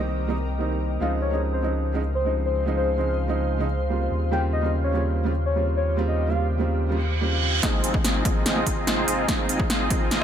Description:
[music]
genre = future bass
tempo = 145 BPM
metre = 4/4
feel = half-time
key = Ab major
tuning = A4 = 440 Hz
[part]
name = felt-muted upright piano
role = accompaniment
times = 0.0-10.2 s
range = Db3 to F4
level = -28 LUFS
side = right 4 dB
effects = sidechain pumping, ping-pong delay
[part]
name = shimmering ambient pad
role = sustained chords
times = 0.0-10.2 s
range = Db3 to F5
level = -33 LUFS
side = equal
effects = chorus, built-in reverb, sidechain pumping
[part]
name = saturated sub bass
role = bass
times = 0.0-10.2 s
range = Ab1 to Eb2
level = -26 LUFS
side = left 1 dB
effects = sidechain pumping
[part]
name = soft octave-layered synth lead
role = melody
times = 1.0-6.5 s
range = C5 to G5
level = -29 LUFS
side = left 3 dB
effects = chorus, phaser, sidechain pumping, ping-pong delay
[part]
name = reverse cymbal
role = sound effects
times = 6.9-7.6 s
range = none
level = -29 LUFS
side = right 5 dB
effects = none
[part]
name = dense compressed supersaw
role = riff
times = 7.6-10.2 s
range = C4 to Eb5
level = -26 LUFS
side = equal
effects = sidechain pumping, low-pass filter, ping-pong delay
[part]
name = big-room dance drum kit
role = drums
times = 7.6-10.2 s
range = hi-hat, rim click, snare drum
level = -26 LUFS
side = equal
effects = overdrive, low-pass filter on snare, low-pass filter on hats, low-pass filter on room
[part]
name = electronic kick drum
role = drums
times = 7.6-10.0 s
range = none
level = -25 LUFS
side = left 1 dB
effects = overdrive
[sound]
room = light reverb, digital ambience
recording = none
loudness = -21 LUFS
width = side -9 dB against mid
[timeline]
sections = 0.0-7.6 A section; 7.6-10.2 B section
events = reverse cymbal 6.9-7.6; build-up 7.6-10.2; drum fill 7.6-10.2; filter sweep on supersaw synth 7.6-10.2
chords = 0.0 Cm7; 1.0 Dbmaj7; 4.1 Eb13; 7.6 Ab6

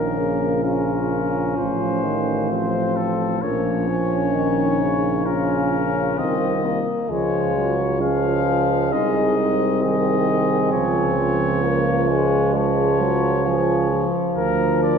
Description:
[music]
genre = classical, brass quintet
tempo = 66 BPM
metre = 4/4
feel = straight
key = unclear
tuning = A4 = 440 Hz
[part]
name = clear trumpet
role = melody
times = 0.0-15.0 s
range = A4 to F5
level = -27 LUFS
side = left 4 dB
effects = none
[part]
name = dark flugelhorn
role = second line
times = 0.0-15.0 s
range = Db4 to Bb4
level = -27 LUFS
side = right 3 dB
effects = none
[part]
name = clear French horn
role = accompaniment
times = 0.0-15.0 s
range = F3 to Db4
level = -24 LUFS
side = left 2 dB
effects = none
[part]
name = clear euphonium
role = accompaniment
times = 0.0-15.0 s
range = Db3 to Ab3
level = -25 LUFS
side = right 2 dB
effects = none
[part]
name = warm tuba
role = bass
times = 0.0-15.0 s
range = A1 to D2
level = -23 LUFS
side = right 1 dB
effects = none
[sound]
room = wet scoring stage reverb, RT60 2.1 s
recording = heard from further back in the room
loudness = -18 LUFS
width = side -6 dB against mid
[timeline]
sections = 0.0-15.0 A section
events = none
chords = 0.0 Bbm; 1.6 F/A; 3.4 Bbm; 7.1 Db; 8.9 Ab/C; 10.7 Db; 14.4 Bb/D

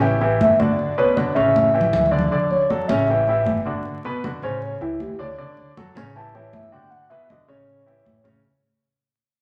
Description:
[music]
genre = Afro-Cuban jazz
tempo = 157 BPM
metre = 4/4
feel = straight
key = unclear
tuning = A4 = 440 Hz
[part]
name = clear baby grand piano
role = accompaniment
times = 0.0-8.4 s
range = B2 to D5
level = -26 LUFS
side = equal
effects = none
[part]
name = upright bass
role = bass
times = 0.0-8.4 s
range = G1 to D2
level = -30 LUFS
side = equal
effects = none
[part]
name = congas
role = percussion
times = 0.0-8.4 s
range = none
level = -28 LUFS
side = equal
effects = none
[part]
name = pure breathy sine lead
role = melody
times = 0.4-8.3 s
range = E4 to A5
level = -23 LUFS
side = equal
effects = chorus
[sound]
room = wet large studio reverb, RT60 1.2 s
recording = vinyl crackle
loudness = -20 LUFS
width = mono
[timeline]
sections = 0.0-8.4 A section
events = fade-out 0.0-8.4; soft synth lead solo 0.0-8.4; drum fill 1.5-2.3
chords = 0.0 A5; 0.8 Bm11; 1.5 A7; 2.3 Dmaj7; 3.1 A5; 3.8 Bm9; 4.6 A7; 5.4 Dmaj7; 6.1 A5; 6.9 Bm11; 7.7 A7

